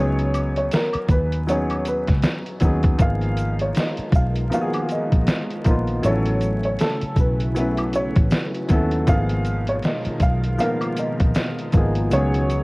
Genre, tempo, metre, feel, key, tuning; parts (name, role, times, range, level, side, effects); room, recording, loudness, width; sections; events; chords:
lo-fi hip hop; 79 BPM; 4/4; swing 58% on 16ths; G# dorian; A4 = 440 Hz
dark upright piano; melody; 0.0-12.6 s; A4 to E#5; -27 LUFS; equal; low-pass filter
felt-muted upright piano; accompaniment; 0.0-12.6 s; E#3 to B4; -25 LUFS; left 1 dB; low-pass filter
vintage muted fingered electric bass; bass; 0.0-12.6 s; G#1 to D#2; -22 LUFS; equal; tube saturation
lo-fi sampler-style drum kit; drums; 0.2-12.6 s; hi-hat, kick drum, snare drum; -20 LUFS; equal; overdrive, vintage 12-bit sampler grit
tube shaker and woodblock; percussion; 0.3-12.6 s; -36 LUFS; equal
soft string machine; sustained chords; 3.0-12.6 s; B2 to A#4; -30 LUFS; equal; phaser, ensemble chorus, low-pass filter
light reverb, studio reverb; worn, warbling old tape, cassette tape, vinyl crackle, warbly pitch drift; -18 LUFS; side -26 dB against mid
0.0-12.6 A section
0.0 C#9sus4; 3.0 G#m69; 6.0 A69; 9.1 G#m69; 12.1 C#9sus4